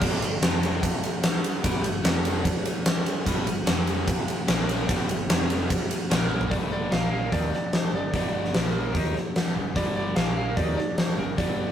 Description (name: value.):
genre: hard rock.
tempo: 148 BPM.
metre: 4/4.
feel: straight.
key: G minor.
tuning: A4 = 443 Hz.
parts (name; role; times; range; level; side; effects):
cranked stack guitar; riff; 0.0-11.7 s; F2 to Eb4; -33 LUFS; right 4 dB; overdrive, phaser.
distorted electric guitar; riff; 0.0-11.7 s; F2 to Eb4; -33 LUFS; left 4 dB; overdrive.
hollow-body short-scale fingered electric bass; bass; 0.0-11.7 s; F1 to Eb2; -32 LUFS; equal; none.
huge arena drum kit; drums; 0.0-11.7 s; crash cymbal, hi-hat, kick drum, ride cymbal, snare drum, toms; -24 LUFS; equal; none.
lightly driven lead guitar; melody; 6.5-11.7 s; Bb4 to F5; -32 LUFS; right 2 dB; none.
room: moderate studio reverb, RT60 0.6 s.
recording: rough rehearsal-room recording.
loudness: -23 LUFS.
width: side -9 dB against mid.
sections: 0.0-6.5 A section; 6.5-11.7 B section.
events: drum fill 6.3.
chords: 0.0 G5; 0.4 F5; 1.6 G5; 2.0 F5; 3.3 G5; 3.7 F5; 4.5 Bb5; 4.9 G5; 5.3 F5; 6.1 Bb5; 6.5 G5; 6.9 Bb5; 7.3 Gm; 8.5 Bb5; 8.9 Gm; 10.2 Bb5; 10.6 Gm.